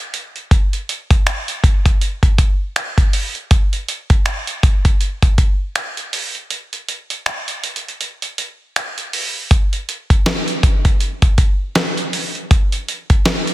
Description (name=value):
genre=R&B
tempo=80 BPM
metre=4/4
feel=swing 58% on 16ths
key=none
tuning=none
part: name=dusty soul sampler-style drum kit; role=drums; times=0.1-13.5 s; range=finger snaps, hi-hat, kick drum, snare drum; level=-15 LUFS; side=equal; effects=soft clipping on snare
room=little or no reverb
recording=dense, heavily limited modern master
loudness=-15 LUFS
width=side -16 dB against mid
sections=0.0-9.5 A section; 9.5-13.5 A section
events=break 6.5-9.5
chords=none